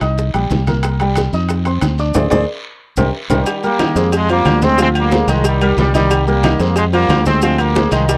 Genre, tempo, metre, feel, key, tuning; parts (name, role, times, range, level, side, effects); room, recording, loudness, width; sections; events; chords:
latin, salsa; 182 BPM; 4/4; straight; C minor; A4 = 445 Hz
clear concert grand piano; accompaniment; 0.0-8.2 s; Eb3 to Eb6; -21 LUFS; equal
fingered electric bass; bass; 0.0-8.2 s; Bb1 to F2; -19 LUFS; equal
bongos and cowbell; percussion; 0.0-8.2 s; -26 LUFS; equal
congas; percussion; 0.0-8.2 s; -24 LUFS; equal
guiro; percussion; 0.0-8.2 s; -35 LUFS; equal
maracas; percussion; 0.0-8.2 s; -35 LUFS; equal
timbales and agogo bells; percussion; 0.0-8.2 s; -27 LUFS; equal
brilliant trombone section; melody; 3.3-8.2 s; Eb3 to C4; -20 LUFS; equal
little or no reverb; dry, close 1970s-style studio recording; -15 LUFS; mono
0.0-3.5 A section; 3.5-8.2 B section
drum fill 2.2-3.5; band accent 2.2-3.5
0.2 Cm7; 1.5 F5; 2.2 Csus2/D; 2.8 Cm7; 4.1 Fm; 4.8 Dm7b5; 5.4 Cm7; 6.8 Fm; 7.4 Dm7b5